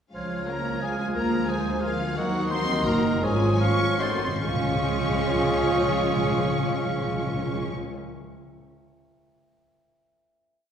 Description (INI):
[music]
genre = classical, dramatic, fast romantic movement for symphony orchestra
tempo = 141-180 BPM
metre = 3/4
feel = straight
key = Db major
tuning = A4 = 441 Hz
[part]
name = warm symphonic violin section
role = melody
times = 0.1-7.7 s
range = F5 to Db6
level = -33 LUFS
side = left 3 dB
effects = none
[part]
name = mellow clarinet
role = second line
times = 0.1-7.7 s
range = Ab4 to F5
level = -34 LUFS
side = left 2 dB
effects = none
[part]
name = mellow flute section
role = second line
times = 0.1-7.7 s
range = F5 to A6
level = -34 LUFS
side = equal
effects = none
[part]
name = warm cor anglais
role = second line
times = 0.1-7.7 s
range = Db4 to Db5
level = -33 LUFS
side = right 1 dB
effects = none
[part]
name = warm symphonic violin section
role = second line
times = 0.1-7.7 s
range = Bb3 to Db5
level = -35 LUFS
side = left 1 dB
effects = none
[part]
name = mellow bassoon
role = accompaniment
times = 0.1-7.7 s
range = Eb3 to Ab3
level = -34 LUFS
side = right 2 dB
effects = none
[part]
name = rich symphonic viola section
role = accompaniment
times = 0.1-7.7 s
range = Eb3 to F4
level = -32 LUFS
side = equal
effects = none
[part]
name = warm French horn section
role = sustained chords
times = 0.1-7.7 s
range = Ab3 to Gb4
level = -32 LUFS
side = equal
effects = none
[part]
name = dark symphonic cello section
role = bass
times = 0.1-7.7 s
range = F3 to Db4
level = -31 LUFS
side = right 1 dB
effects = none
[part]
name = warm symphonic double bass section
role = bass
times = 0.1-7.7 s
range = Gb1 to Eb2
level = -31 LUFS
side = right 1 dB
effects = none
[part]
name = timpani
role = percussion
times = 4.0-7.7 s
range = Ab2 to Db3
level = -30 LUFS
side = left 1 dB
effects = none
[sound]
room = wet scoring stage reverb, RT60 1.9 s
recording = heard from further back in the room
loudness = -22 LUFS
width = side -8 dB against mid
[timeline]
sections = 0.1-4.4 A section; 4.4-6.9 final chord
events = slowing down 1.7-4.4; timpani fill 4.0-4.4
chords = 0.1 Db; 1.2 Bb7/D; 2.2 Ebm; 2.9 Ebm/Gb; 3.2 Db/Ab; 4.0 Ab7b9; 4.4 Db